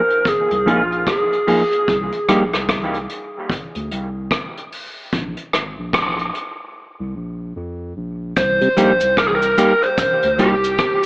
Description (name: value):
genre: dub reggae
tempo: 74 BPM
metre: 4/4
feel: swing 61% on 16ths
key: C minor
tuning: A4 = 440 Hz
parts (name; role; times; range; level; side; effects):
- lead guitar through a small cranked amp; melody; 0.0-1.9, 8.4-11.1 s; F4 to C5; -17 LUFS; equal; overdrive, low-pass filter, dub echo
- vintage brush drum kit; drums; 0.1-11.0 s; hi-hat, kick drum, rim click; -22 LUFS; equal; none
- soft dub sub bass; bass; 0.5-10.8 s; Ab1 to F2; -27 LUFS; equal; none
- semi-hollow electric guitar; accompaniment; 0.7-2.4, 8.8-10.5 s; F3 to Ab4; -20 LUFS; right 1 dB; low-pass filter, dub echo
- cabasa; percussion; 8.4-11.1 s; none; -34 LUFS; right 1 dB; none
- mellow tonewheel organ; accompaniment; 8.6-8.7 s; C3 to G3; -22 LUFS; equal; chorus vibrato, slow rotary speaker
room: moderate spring reverb, RT60 2.3 s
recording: AM radio sound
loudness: -15 LUFS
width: side -25 dB against mid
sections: 0.0-8.4 A section; 8.4-11.1 B section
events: filter sweep 0.0-8.4; break 1.9-8.4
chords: 0.0 Bb7sus4; 1.9 C7(no3); 5.1 Bb5; 8.4 Cm7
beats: 0.26 1.07 | 1.88 2.69 3.50 4.31 | 5.12 5.93 6.74 7.55 | 8.36 9.17 9.98 10.79